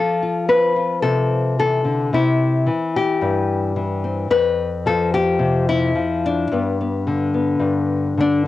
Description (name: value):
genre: folk, solo fingerstyle acoustic guitar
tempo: 110 BPM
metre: 4/4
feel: straight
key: unclear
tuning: A4 = 436 Hz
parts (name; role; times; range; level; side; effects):
- nylon-string guitar; solo; 0.0-8.5 s; F2 to B4; -17 LUFS; left 2 dB; cassette tape
room: moderate booth ambience, RT60 0.2 s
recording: home recording on cassette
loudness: -17 LUFS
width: side -14 dB against mid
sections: 0.0-8.5 A section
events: none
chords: 0.0 F; 2.1 C; 4.3 Fsus2; 6.5 G